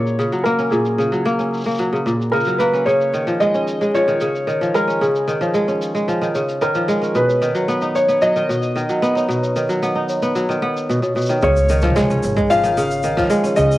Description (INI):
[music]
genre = folktronica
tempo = 112 BPM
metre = 4/4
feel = straight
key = Db mixolydian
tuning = A4 = 436 Hz
[part]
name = felt-muted upright piano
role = melody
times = 0.0-13.8 s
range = Ab4 to F5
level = -20 LUFS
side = equal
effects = cassette tape, analog delay
[part]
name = kora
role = arpeggios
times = 0.0-13.8 s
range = Bb2 to Eb4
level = -18 LUFS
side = equal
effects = cassette tape, analog delay
[part]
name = jazz brush drum kit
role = drums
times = 0.1-13.8 s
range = rim click, shaker, toms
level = -32 LUFS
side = equal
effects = low-pass filter on toms, cassette tape, low-pass filter on snare, low-pass filter on perc, low-pass filter on room
[part]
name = music box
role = second line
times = 2.9-13.6 s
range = Db5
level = -26 LUFS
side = equal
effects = cassette tape, analog delay
[part]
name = upright bass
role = bass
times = 11.4-13.8 s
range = Ab1 to Db2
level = -20 LUFS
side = equal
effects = none
[part]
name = electronic kick drum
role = drums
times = 11.4-13.3 s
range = none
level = -27 LUFS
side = equal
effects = none
[sound]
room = moderate small room reverb, RT60 0.5 s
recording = home recording on cassette, vinyl crackle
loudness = -16 LUFS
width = side -16 dB against mid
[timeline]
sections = 0.0-11.4 A section; 11.4-13.8 B section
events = none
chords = 0.0 Gb; 2.9 Dbadd9; 7.2 Cb; 11.4 Dbadd9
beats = 0.19 | 0.72 1.26 1.79 2.33 | 2.87 3.40 3.94 4.47 | 5.01 5.54 6.08 6.62 | 7.15 7.69 8.22 8.76 | 9.29 9.83 10.37 10.90 | 11.44 11.97 12.51 13.04 | 13.58